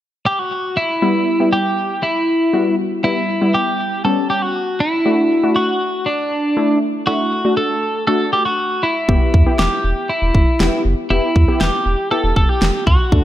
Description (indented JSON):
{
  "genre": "synth-pop",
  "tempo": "119 BPM",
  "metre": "4/4",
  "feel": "straight",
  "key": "E dorian",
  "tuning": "A4 = 440 Hz",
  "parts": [
    { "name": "twelve-string electric guitar", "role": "melody", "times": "0.3-13.2 s", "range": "D4 to A4", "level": "-17 LUFS", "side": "equal", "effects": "ping-pong delay" },
    { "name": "warbly dusty pluck", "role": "accompaniment", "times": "1.0-13.2 s", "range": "G3 to G4", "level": "-20 LUFS", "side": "left 1 dB", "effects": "chorus" },
    { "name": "round analog bass", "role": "bass", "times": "9.1-13.2 s", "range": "E1 to E2", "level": "-17 LUFS", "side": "equal", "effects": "none" },
    { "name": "pop drum kit", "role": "drums", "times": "9.1-13.2 s", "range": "kick drum, snare drum", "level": "-16 LUFS", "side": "equal", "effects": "gated reverb" }
  ],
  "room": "moderate lush hall reverb, RT60 1.9 s, digital ambience",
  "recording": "none",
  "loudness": "-14 LUFS",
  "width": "side -12 dB against mid",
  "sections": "0.0-1.0 A section; 1.0-13.2 B section",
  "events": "none",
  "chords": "0.0 N.C.; 1.0 Em; 5.1 D; 9.1 Em"
}